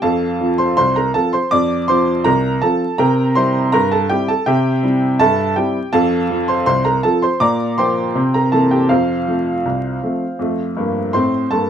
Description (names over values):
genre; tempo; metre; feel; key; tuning
ragtime piano; 81 BPM; 2/4; straight; F major; A4 = 439 Hz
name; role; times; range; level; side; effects
clear upright piano; solo; 0.0-11.7 s; C2 to D6; -14 LUFS; right 1 dB; none
room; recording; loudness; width
light reverb; vinyl crackle; -14 LUFS; side -8 dB against mid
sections
0.0-11.7 A section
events
none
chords
0.0 F; 3.0 C7; 5.9 F; 7.4 Bb; 8.2 C7; 8.9 F